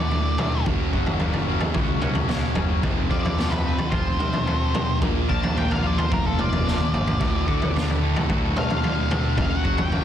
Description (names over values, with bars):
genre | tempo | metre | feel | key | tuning
quiet-loud alternative rock | 110 BPM | 4/4 | straight | unclear | A4 = 440 Hz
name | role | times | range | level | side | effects
octave-fuzz lead guitar | melody | 0.0-10.0 s | A4 to A5 | -30 LUFS | left 2 dB | distortion, plate reverb, tape echo
twangy electric guitar | arpeggios | 0.0-10.0 s | D2 to Bb4 | -32 LUFS | left 2 dB | lush chorus, tape echo
thick fuzz guitar | riff | 0.0-10.0 s | D2 to Bb3 | -27 LUFS | right 1 dB | distortion
raw garage drum kit | drums | 0.1-10.0 s | kick drum, snare drum, toms | -23 LUFS | equal | none
fuzz picked electric bass | bass | 0.7-10.0 s | F1 to D3 | -28 LUFS | equal | overdrive
room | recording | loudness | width
light reverb | dense, heavily limited modern master | -20 LUFS | side -10 dB against mid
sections
0.0-10.0 A section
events
lead electric guitar solo 0.0-10.0; drum fill 6.7-7.2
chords
0.0 D; 0.7 F#; 2.8 F; 5.0 Bb; 7.2 D; 9.4 F#